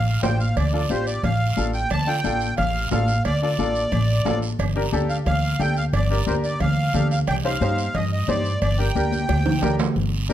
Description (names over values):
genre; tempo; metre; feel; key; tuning
latin, cumbia; 179 BPM; 4/4; straight; G minor; A4 = 440 Hz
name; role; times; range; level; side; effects
accordion; melody; 0.0-9.8 s; C5 to A5; -26 LUFS; right 1 dB; light tremolo tuning
upright bass; bass; 0.0-10.3 s; G1 to G2; -22 LUFS; equal; none
bright upright piano; accompaniment; 0.2-10.3 s; D4 to C5; -27 LUFS; left 2 dB; none
congas; percussion; 0.2-10.3 s; none; -29 LUFS; left 4 dB; none
guiro; percussion; 0.2-10.3 s; none; -36 LUFS; right 6 dB; none
timbales and cowbell; percussion; 0.2-9.9 s; none; -29 LUFS; right 7 dB; none
room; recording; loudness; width
light reverb; close, detailed microphones; -19 LUFS; side -11 dB against mid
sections
0.0-10.0 A section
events
drum fill 9.1-10.0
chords
0.0 Dm; 4.6 Gm; 7.3 Cmadd9; 8.6 Gm